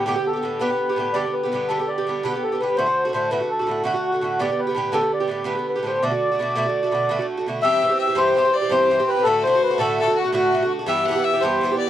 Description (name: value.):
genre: celtic folk, Celtic slip jig.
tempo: 111 BPM (dotted quarters).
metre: 9/8.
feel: straight.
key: D mixolydian.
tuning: A4 = 440 Hz.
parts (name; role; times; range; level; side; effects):
mellow accordion; melody; 0.0-11.9 s; F#4 to E5; -20 LUFS; left 1 dB; none.
Irish bouzouki; accompaniment; 0.0-11.9 s; G2 to G4; -24 LUFS; right 4 dB; none.
clear fiddle; second line; 7.6-11.9 s; F#4 to F#5; -26 LUFS; left 10 dB; none.
room: light reverb.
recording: dry, close 1970s-style studio recording.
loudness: -18 LUFS.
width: side -11 dB against mid.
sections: 0.0-7.6 A section; 7.6-11.9 B section.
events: none.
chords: 0.0 Gadd9; 1.1 G; 2.8 D; 4.4 Gadd9; 6.0 D6; 7.6 C; 9.3 D; 10.9 Em.